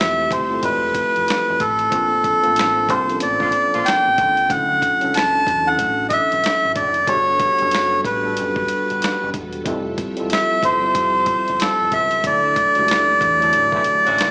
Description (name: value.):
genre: R&B, neo-soul.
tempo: 93 BPM.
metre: 4/4.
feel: swing 62% on 16ths.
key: D major.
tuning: A4 = 435 Hz.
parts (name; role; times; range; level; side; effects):
melodica; melody; 0.0-14.3 s; A4 to A5; -16 LUFS; equal; slapback echo.
tine electric piano; accompaniment; 0.0-14.3 s; D3 to C5; -26 LUFS; equal; medium stereo tremolo, slapback echo.
string machine, full ensemble; sustained chords; 0.0-14.3 s; E3 to E5; -34 LUFS; equal; none.
deep dub fingered electric bass; bass; 0.0-14.3 s; E1 to E2; -32 LUFS; equal; none.
dusty soul sampler-style drum kit; drums; 0.0-14.3 s; finger snaps, hi-hat, kick drum, snare drum; -24 LUFS; equal; none.
clear horn section; stabs; 3.4-3.9, 13.7-14.3 s; C#3 to F#4; -26 LUFS; equal; slapback echo.
room: moderate club reverb, RT60 0.8 s.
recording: live gig heard through the venue's PA, club reverb, small speaker sound.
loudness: -15 LUFS.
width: side -36 dB against mid.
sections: 0.0-14.3 A section.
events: band accent 1.9-4.5, 12.2-14.3.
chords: 0.0 Fmaj9; 1.9 Bbmaj9; 4.5 Dmaj9; 7.1 Gmaj9; 9.7 Fmaj9; 12.2 Dmaj9.